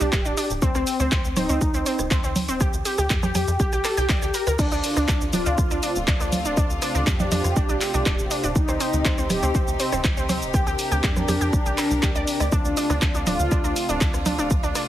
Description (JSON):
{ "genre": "melodic techno", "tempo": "121 BPM", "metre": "4/4", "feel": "straight", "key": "D phrygian", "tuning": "A4 = 440 Hz", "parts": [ { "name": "mellow synth brass", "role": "melody", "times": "0.0-13.9 s", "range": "C4 to G4", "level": "-28 LUFS", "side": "equal", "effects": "chorus, sidechain pumping, dub echo" }, { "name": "wide unison pluck", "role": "arpeggios", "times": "0.0-14.8 s", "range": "C4 to Bb6", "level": "-27 LUFS", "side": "right 1 dB", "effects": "sidechain pumping, digital delay" }, { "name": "tight sequencer bass", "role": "bass", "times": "0.0-14.7 s", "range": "D1 to F2", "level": "-27 LUFS", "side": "equal", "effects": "tube saturation, sidechain pumping" }, { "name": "punchy analog drum machine", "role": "drums", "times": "0.0-14.9 s", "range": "congas, crash cymbal, handclaps, hi-hat, rim click, shaker", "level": "-27 LUFS", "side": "right 1 dB", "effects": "none" }, { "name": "electronic kick drum", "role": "drums", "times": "0.1-14.6 s", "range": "none", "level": "-23 LUFS", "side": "equal", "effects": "none" }, { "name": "rich chamber string section", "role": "sustained chords", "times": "4.6-14.9 s", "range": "C3 to Bb4", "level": "-31 LUFS", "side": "left 1 dB", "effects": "sidechain pumping" } ], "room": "light reverb", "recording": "heavily compressed radio sound", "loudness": "-20 LUFS", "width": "side -12 dB against mid", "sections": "0.0-14.9 A section", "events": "none", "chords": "0.0 D7(no3); 2.6 G5/D; 4.6 Dm7; 8.6 Cm/D; 10.5 Gm/D; 12.5 Dm7" }